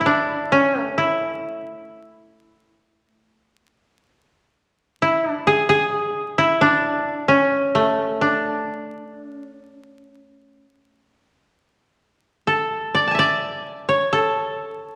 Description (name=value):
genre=japanese traditional, Japanese chamber music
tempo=66 BPM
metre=4/4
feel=rubato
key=A ryukyu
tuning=A4 = 440 Hz
part: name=koto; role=solo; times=0.0-15.0 s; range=A3 to A5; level=-20 LUFS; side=equal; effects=none
room=wet concert hall reverb, RT60 1.8 s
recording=vinyl crackle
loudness=-20 LUFS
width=mono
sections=0.0-15.0 A section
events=none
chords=none